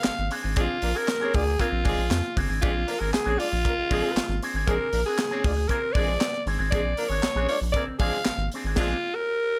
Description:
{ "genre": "funk", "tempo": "117 BPM", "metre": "4/4", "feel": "straight", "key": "Bb mixolydian", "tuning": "A4 = 440 Hz", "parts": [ { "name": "raspy alto saxophone", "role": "melody", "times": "0.0-9.6 s", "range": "F4 to F5", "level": "-30 LUFS", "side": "equal", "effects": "none" }, { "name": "electric guitar with an envelope filter", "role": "accompaniment", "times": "0.0-9.0 s", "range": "C4 to Ab4", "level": "-35 LUFS", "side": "equal", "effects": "none" }, { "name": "crisp fusion drum kit", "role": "drums", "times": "0.0-8.9 s", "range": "crash cymbal, handclaps, hi-hat, kick drum, snare drum", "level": "-31 LUFS", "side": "equal", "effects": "none" }, { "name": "round analog bass", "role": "bass", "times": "0.1-8.9 s", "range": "G1 to F2", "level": "-30 LUFS", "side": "equal", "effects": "none" }, { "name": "mellow horn section", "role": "second line", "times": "0.6-8.9 s", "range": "F3 to D5", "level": "-34 LUFS", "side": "equal", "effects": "none" } ], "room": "light reverb, small room ambience", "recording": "none", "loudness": "-25 LUFS", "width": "mono", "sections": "0.0-9.6 A section", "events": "band accent 8.8-9.6", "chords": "0.0 Bb9", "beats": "0.06 | 0.57 1.09 1.60 2.11 | 2.63 3.14 3.65 4.17 | 4.68 5.19 5.70 6.21 | 6.72 7.24 7.75 8.26 | 8.77 9.28" }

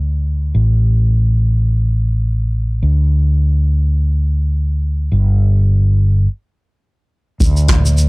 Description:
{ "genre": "sunset chillout", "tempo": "105 BPM", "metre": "4/4", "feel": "swing 56% on 16ths", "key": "unclear", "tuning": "A4 = 440 Hz", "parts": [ { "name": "fretless electric bass", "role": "bass", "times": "0.0-8.1 s", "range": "G1 to D2", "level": "-12 LUFS", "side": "equal", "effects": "tube saturation, wide subtle chorus" }, { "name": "electronic kick drum", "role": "drums", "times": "7.4-7.8 s", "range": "none", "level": "-15 LUFS", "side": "equal", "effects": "none" }, { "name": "vintage brush drum kit", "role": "drums", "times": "7.4-8.1 s", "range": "hi-hat, shaker, toms", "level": "-19 LUFS", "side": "right 1 dB", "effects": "low-pass filter on toms, low-pass filter on hats, low-pass filter on snare, low-pass filter on perc, low-pass filter on room" } ], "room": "little or no reverb", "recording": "dry, gritty hardware recording", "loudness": "-12 LUFS", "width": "side -28 dB against mid", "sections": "0.0-7.4 A section", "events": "filter sweep on drum 0.0-7.4; stop 6.3-7.4", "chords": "none", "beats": "| 0.54 1.11 1.69 2.26 | 2.83 3.40 3.97 4.54 | 5.12 5.69 6.26 6.83 | 7.40 7.97" }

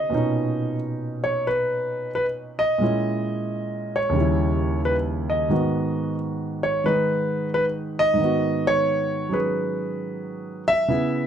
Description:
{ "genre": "solo jazz", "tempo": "89 BPM", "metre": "4/4", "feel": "swing 68% on 8ths", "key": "G# minor", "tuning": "A4 = 440 Hz", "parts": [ { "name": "warm concert grand piano", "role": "solo", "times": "0.0-11.3 s", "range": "D#2 to E5", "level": "-21 LUFS", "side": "right 1 dB", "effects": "none" } ], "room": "light reverb", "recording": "none", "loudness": "-21 LUFS", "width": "side -8 dB against mid", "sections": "0.0-10.9 A section", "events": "none", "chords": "0.1 Bmaj9; 2.8 A#m7b5; 4.2 D#7b9; 5.5 G#m7", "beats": "| 0.11 0.78 1.46 2.13 | 2.81 3.48 4.15 4.83 | 5.50 6.17 6.84 7.52 | 8.19 8.86 9.54 10.21 | 10.88" }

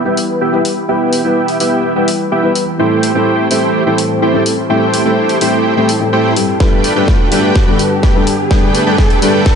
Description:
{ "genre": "EDM, festival progressive house", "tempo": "126 BPM", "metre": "4/4", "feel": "straight", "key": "unclear", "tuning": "A4 = 440 Hz", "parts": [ { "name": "felt-muted upright piano", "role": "accompaniment", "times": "0.0-9.4 s", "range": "G2 to B4", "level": "-16 LUFS", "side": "left 3 dB", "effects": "vintage 12-bit sampler grit, sidechain pumping, dub echo" }, { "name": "lush unison pad", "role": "sustained chords", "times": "0.0-9.6 s", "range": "D3 to B4", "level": "-19 LUFS", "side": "right 1 dB", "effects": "chorus, sidechain pumping" }, { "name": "dense compressed supersaw", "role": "riff", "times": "0.0-9.6 s", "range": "A3 to G5", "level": "-14 LUFS", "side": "right 2 dB", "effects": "sidechain pumping, low-pass filter, dub echo" }, { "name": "riser", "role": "sound effects", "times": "2.6-9.6 s", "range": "none", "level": "-25 LUFS", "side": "right 1 dB", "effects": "none" }, { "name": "big-room dance drum kit", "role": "drums", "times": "0.2-9.6 s", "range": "hi-hat, snare drum", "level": "-22 LUFS", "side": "left 2 dB", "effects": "high-pass filter on snare, small room ambience, high-pass filter on hats" }, { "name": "electronic kick drum", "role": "drums", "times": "6.6-9.6 s", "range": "none", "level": "-12 LUFS", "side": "equal", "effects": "small room ambience" } ], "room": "moderate lush hall reverb, RT60 2.4 s", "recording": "nothing above 10.6 kHz", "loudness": "-10 LUFS", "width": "side -6 dB against mid", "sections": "0.0-9.6 A section", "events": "build-up 0.0-9.6; filter sweep on supersaw synth 0.0-9.6; filter sweep on analog synth pad 0.0-9.6; riser 2.6-9.6; drum fill 6.6-9.6", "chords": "0.0 Em; 2.8 Am7; 6.6 Gadd9", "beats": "0.41 | 0.89 1.36 1.84 2.32 | 2.79 3.27 3.75 4.22 | 4.70 5.17 5.65 6.13 | 6.60 7.08 7.56 8.03 | 8.51 8.98 9.46" }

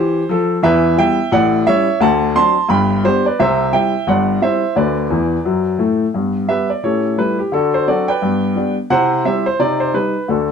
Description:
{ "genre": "jazz, stride piano", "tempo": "174 BPM", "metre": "4/4", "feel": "swing 60% on 8ths", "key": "G major", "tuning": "A4 = 442 Hz", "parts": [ { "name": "warm upright piano", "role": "solo", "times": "0.0-10.5 s", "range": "G1 to C6", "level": "-13 LUFS", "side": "equal", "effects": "none" } ], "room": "moderate club ambience, RT60 0.5 s", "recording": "dark, warm production", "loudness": "-13 LUFS", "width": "side -6 dB against mid", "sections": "0.0-6.1 A section; 6.1-10.5 B section", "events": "upright piano fill 5.1-6.1", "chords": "0.0 C; 0.6 Em; 1.3 A7; 2.0 D7; 2.7 G; 3.4 C; 4.8 Bmadd11/D; 5.4 D; 6.1 G; 6.8 A7; 7.5 D7; 8.2 G; 8.9 C; 9.6 Cm", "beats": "0.28 | 0.62 0.96 1.31 1.65 | 2.00 2.34 2.69 3.03 | 3.37 3.72 4.06 4.41 | 4.75 5.09 5.44 5.78 | 6.13 6.47 6.82 7.16 | 7.51 7.86 8.20 8.55 | 8.89 9.24 9.58 9.93 | 10.28" }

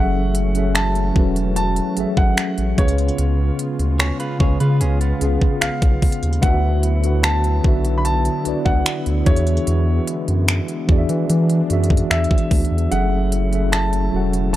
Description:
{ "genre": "contemporary R&B", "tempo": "74 BPM", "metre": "4/4", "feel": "straight", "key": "F# minor", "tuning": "A4 = 442 Hz", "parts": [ { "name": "warm concert grand piano", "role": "melody", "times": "0.0-14.6 s", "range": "C#5 to B5", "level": "-26 LUFS", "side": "equal", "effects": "tape echo" }, { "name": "mellow tine electric piano", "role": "accompaniment", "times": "0.0-14.6 s", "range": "C#3 to C#6", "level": "-22 LUFS", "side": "equal", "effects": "medium stereo tremolo" }, { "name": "warm analog pad", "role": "sustained chords", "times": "0.0-14.6 s", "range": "C#3 to F#4", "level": "-30 LUFS", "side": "equal", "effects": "wide subtle chorus" }, { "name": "round analog bass", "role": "bass", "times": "0.0-14.6 s", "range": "E1 to E3", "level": "-19 LUFS", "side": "equal", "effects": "none" }, { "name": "trap drum kit", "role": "drums", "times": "0.3-14.6 s", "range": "finger snaps, hi-hat, kick drum", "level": "-18 LUFS", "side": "equal", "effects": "overdrive" }, { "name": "direct-recorded clean electric guitar", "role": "arpeggios", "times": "4.0-6.2 s", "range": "B3 to C#5", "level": "-30 LUFS", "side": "right 2 dB", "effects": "tape echo" } ], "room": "little or no reverb", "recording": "dry, gritty hardware recording, transformer saturation", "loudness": "-16 LUFS", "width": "side -14 dB against mid", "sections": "0.0-14.6 A section", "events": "break 12.9-14.5", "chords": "0.0 F#m7; 2.8 C#7; 6.4 D69; 9.3 E7; 12.9 F#m7", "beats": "0.75 1.56 2.37 | 3.19 4.00 4.81 5.62 | 6.43 7.24 8.05 8.86 | 9.67 10.48 11.29 12.10 | 12.91 13.72 14.54" }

